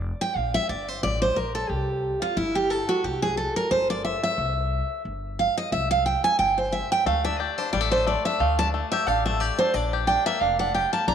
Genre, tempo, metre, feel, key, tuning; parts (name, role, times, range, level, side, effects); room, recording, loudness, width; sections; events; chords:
bluegrass; 179 BPM; 4/4; swing 56% on 8ths; A4 = 440 Hz
upright bass; bass; 0.0-11.1 s; F1 to D2; -30 LUFS; left 1 dB
picked steel-string acoustic guitar; accompaniment; 0.2-11.1 s; E4 to Bb5; -23 LUFS; right 2 dB
bluegrass banjo; melody; 7.1-11.1 s; G3 to G4; -28 LUFS; left 10 dB
wet spring reverb, RT60 2.8 s; -22 LUFS; side -8 dB against mid
0.0-11.1 A section
steel-string acoustic guitar solo 0.0-11.1
0.0 Bb; 1.7 C; 7.1 D5; 9.7 Bb